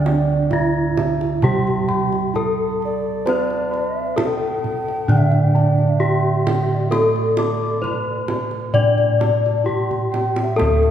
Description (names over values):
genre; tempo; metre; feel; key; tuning
Javanese gamelan; 66 BPM; 4/4; straight; D slendro; A4 = 440 Hz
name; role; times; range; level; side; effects
gamelan-type bronze metallophone; melody; 0.0-10.9 s; D4 to D5; -22 LUFS; left 3 dB; none
mellow hollow bansuri; second line; 0.0-10.9 s; D5 to G5-33c; -28 LUFS; right 3 dB; none
gamelan-type bronze metallophone; accompaniment; 0.0-10.9 s; D3 to D4; -23 LUFS; right 3 dB; none
gamelan-type bossed gongs; arpeggios; 0.0-10.9 s; D5 to D6; -30 LUFS; left 6 dB; none
gamelan-type bossed gongs; bass; 0.0-10.9 s; D2 to C5-45c; -22 LUFS; equal; none
gamelan-type bronze metallophone; arpeggios; 0.1-10.9 s; D5 to D6; -28 LUFS; right 3 dB; none
kendang; percussion; 0.1-10.9 s; none; -27 LUFS; right 3 dB; none
room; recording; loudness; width
wet concert hall reverb, RT60 2.5 s; heard from further back in the room; -16 LUFS; side -10 dB against mid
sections
0.0-10.9 A section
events
drum fill 9.7-10.6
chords
none